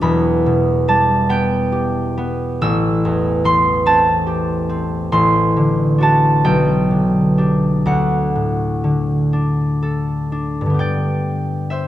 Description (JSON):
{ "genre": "classical, solo harp piece", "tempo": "41-49 BPM (dotted quarters)", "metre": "6/8", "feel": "rubato", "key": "G major", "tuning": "A4 = 440 Hz", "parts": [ { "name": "concert harp", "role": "solo", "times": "0.0-11.9 s", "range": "E1 to E6", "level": "-14 LUFS", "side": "equal", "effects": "none" } ], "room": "wet scoring stage reverb, RT60 2.1 s", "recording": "dark, warm production", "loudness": "-14 LUFS", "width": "side -13 dB against mid", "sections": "0.0-10.8 A section; 10.8-11.9 B section", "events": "none", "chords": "0.0 Em; 2.6 Am7; 5.1 D7/A; 6.5 G/B; 7.9 D; 10.8 G" }